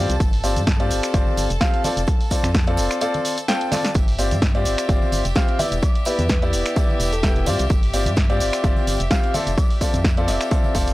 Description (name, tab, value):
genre	piano house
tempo	128 BPM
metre	4/4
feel	swing 55% on 16ths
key	unclear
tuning	A4 = 440 Hz
part	clear chamber violin section	sustained chords	0.0-10.9 s	G4 to A5	-32 LUFS	equal	sidechain pumping
part	clear upright piano	riff	0.0-10.9 s	B3 to G5	-23 LUFS	left 1 dB	sidechain pumping
part	organ-like FM bass	bass	0.0-10.9 s	E1 to G2	-23 LUFS	equal	sidechain pumping
part	punchy analog drum machine	drums	0.1-10.9 s	finger snaps, hi-hat, shaker, snare drum	-26 LUFS	equal	none
part	tambourine and congas	percussion	0.1-10.9 s	none	-33 LUFS	right 2 dB	none
part	electronic kick drum	drums	0.2-10.9 s	none	-19 LUFS	equal	overdrive
part	soft struck synth lead	melody	5.6-10.7 s	A4 to E5	-30 LUFS	equal	chorus, tape echo
room	digital ambience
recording	dry, gritty hardware recording, transformer saturation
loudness	-17 LUFS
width	side -17 dB against mid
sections	0.0-10.9 A section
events	drum fill 3.7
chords	0.0 F6; 4.0 G7sus4; 5.6 Em7; 7.5 G7sus4; 9.3 F6